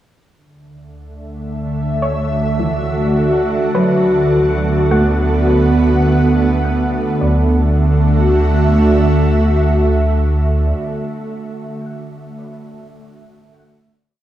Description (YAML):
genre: ambient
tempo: 52 BPM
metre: 3/4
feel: straight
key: D major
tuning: A4 = 440 Hz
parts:
  - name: ethereal airy pad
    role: sustained chords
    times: 1.4-11.2 s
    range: D3 to F#5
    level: -16 LUFS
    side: right 1 dB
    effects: ensemble chorus, built-in reverb
  - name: warm sub bass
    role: bass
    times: 0.3-10.7 s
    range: D2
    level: -18 LUFS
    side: equal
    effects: none
  - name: organ-like drone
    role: drone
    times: 1.3-10.7 s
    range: D3 to A3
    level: -21 LUFS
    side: right 2 dB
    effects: ensemble chorus, built-in reverb
  - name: soft round pluck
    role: arpeggios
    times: 2.0-10.7 s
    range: E3 to F#5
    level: -23 LUFS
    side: equal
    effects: chorus, diffuse ambient delay
room: wet huge ambient reverb, RT60 8.7 s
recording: small room ambience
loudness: -12 LUFS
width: side -12 dB against mid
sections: 0.3-7.2 A section; 7.2-10.7 final chord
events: fade-in on sub bass 0.3-7.2; filter sweep on ambient pad 0.3-7.2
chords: 0.3 Dadd9; 3.8 Bm/D; 7.2 Dadd9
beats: | 0.29 1.45 2.60 | 3.75 4.91 6.06 | 7.21 8.37 9.52